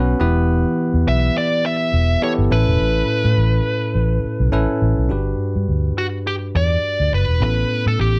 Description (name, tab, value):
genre	1980s-style pop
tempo	104 BPM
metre	4/4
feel	swing 55% on 16ths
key	unclear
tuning	A4 = 440 Hz
part	bell-like tine electric piano	accompaniment	0.0-8.2 s	G2 to B4	-23 LUFS	equal	none
part	vintage muted fingered electric bass	bass	0.0-8.2 s	E1 to A2	-20 LUFS	equal	none
part	nasal lead guitar with a parked wah	melody	1.1-8.2 s	F#4 to E5	-24 LUFS	equal	overdrive, slapback echo
room	little or no reverb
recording	dry, close 1970s-style studio recording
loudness	-18 LUFS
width	mono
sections	0.0-5.1 A section; 5.1-8.2 B section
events	none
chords	0.2 Em; 2.5 Aadd9; 5.1 Gmaj7; 7.4 Aadd9